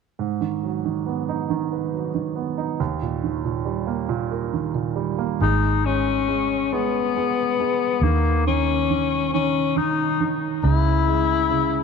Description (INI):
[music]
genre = pop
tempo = 46 BPM (dotted quarters)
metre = 6/8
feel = straight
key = G# minor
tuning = A4 = 440 Hz
[part]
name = warm grand piano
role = accompaniment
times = 0.2-11.8 s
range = D#2 to B4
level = -24 LUFS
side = right 10 dB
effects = none
[part]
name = breathy tenor saxophone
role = melody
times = 5.4-11.8 s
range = A#3 to E4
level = -21 LUFS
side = left 10 dB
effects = tape echo
[part]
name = vintage muted fingered electric bass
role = bass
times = 5.4-11.8 s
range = G#1 to D#2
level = -23 LUFS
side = equal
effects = none
[sound]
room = moderate plate reverb, RT60 3.3 s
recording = 1960s-style stereo with parts hard left and right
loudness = -20 LUFS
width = side -5 dB against mid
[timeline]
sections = 0.2-5.4 A section; 5.4-11.8 B section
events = none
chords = 0.2 G#m7; 2.8 D#; 5.4 G#m; 8.0 A#madd11/D# (rootless); 10.6 C#5